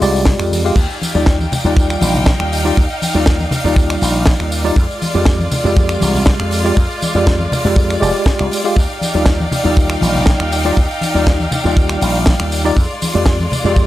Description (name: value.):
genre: nu-disco, nu disco.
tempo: 120 BPM.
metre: 4/4.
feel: swing 53% on 16ths.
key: unclear.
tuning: A4 = 441 Hz.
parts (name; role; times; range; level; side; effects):
tine electric piano; accompaniment; 0.0-13.9 s; G3 to F5; -19 LUFS; equal; overdrive, fast stereo tremolo, sidechain pumping, analog delay.
slap bass with an envelope filter; bass; 0.0-13.9 s; F1 to F2; -18 LUFS; equal; tube saturation.
tight funk drum kit; drums; 0.0-13.9 s; crash cymbal, finger snaps, hi-hat, snare drum, tambourine; -22 LUFS; equal; none.
kick drum; drums; 0.3-13.9 s; none; -13 LUFS; equal; none.
congas; percussion; 0.5-13.6 s; none; -22 LUFS; left 2 dB; none.
bright studio string section; sustained chords; 0.8-13.9 s; Ab3 to G5; -21 LUFS; equal; vintage 12-bit sampler grit, sidechain pumping.
room: studio reverb.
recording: dry, gritty hardware recording.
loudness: -12 LUFS.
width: side -15 dB against mid.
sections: 0.0-13.9 A section.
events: none.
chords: 0.0 Fm69; 0.8 Ebmaj9; 4.8 Fm69; 8.8 Ebmaj9; 12.8 Fm69.